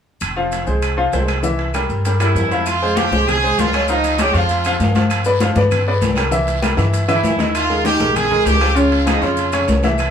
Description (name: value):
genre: latin, salsa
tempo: 196 BPM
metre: 4/4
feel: straight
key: F minor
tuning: A4 = 441 Hz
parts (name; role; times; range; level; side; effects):
- upright bass; bass; 0.2-10.1 s; F1 to G2; -20 LUFS; equal; none
- claves; percussion; 0.2-10.1 s; none; -31 LUFS; left 1 dB; none
- maracas; percussion; 0.2-10.1 s; none; -35 LUFS; left 7 dB; none
- timbales; percussion; 0.2-10.1 s; none; -25 LUFS; right 4 dB; none
- bright baby grand piano; accompaniment; 0.4-10.1 s; Db3 to F5; -19 LUFS; left 2 dB; none
- brilliant horn section; melody; 2.2-4.6, 7.1-9.5 s; Eb4 to Ab4; -18 LUFS; right 2 dB; none
- congas; percussion; 2.7-10.1 s; none; -23 LUFS; left 3 dB; none
- guiro; percussion; 2.7-10.1 s; none; -31 LUFS; right 6 dB; none
room: moderate studio reverb, RT60 0.7 s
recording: small room ambience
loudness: -14 LUFS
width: side -8 dB against mid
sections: 0.2-2.7 A section; 2.7-10.1 B section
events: none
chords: 0.2 Fm; 1.4 C7; 2.7 Fm; 3.9 Dbadd9; 5.1 G7; 6.3 C; 7.5 Eb7sus4; 8.8 Dbmaj7